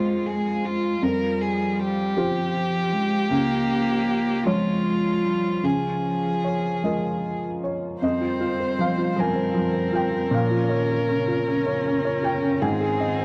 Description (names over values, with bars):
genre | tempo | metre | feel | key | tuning
neoclassical piano and strings | 52 BPM (dotted quarters) | 6/8 | rubato | F minor | A4 = 440 Hz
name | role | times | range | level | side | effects
rich violin | melody | 0.0-13.2 s | F4 to C5 | -29 LUFS | equal | tape echo
rich cello | second line | 0.0-13.2 s | Db3 to Bb3 | -29 LUFS | equal | none
felt-muted upright piano | accompaniment | 0.0-13.2 s | Db2 to Ab5 | -28 LUFS | equal | none
deep dark ambient pad | sustained chords | 0.0-13.2 s | F3 to Db5 | -37 LUFS | equal | chorus, built-in reverb
rich viola | accompaniment | 8.0-13.2 s | C4 to Db4 | -33 LUFS | equal | none
room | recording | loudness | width
little or no reverb | dry, close 1970s-style studio recording | -24 LUFS | mono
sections
0.0-8.0 A section; 8.0-13.2 B section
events
none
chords
0.0 Fmadd9; 3.3 Db; 5.6 Bbm7/Db; 8.0 Fm7; 10.3 Bbm; 12.6 Ab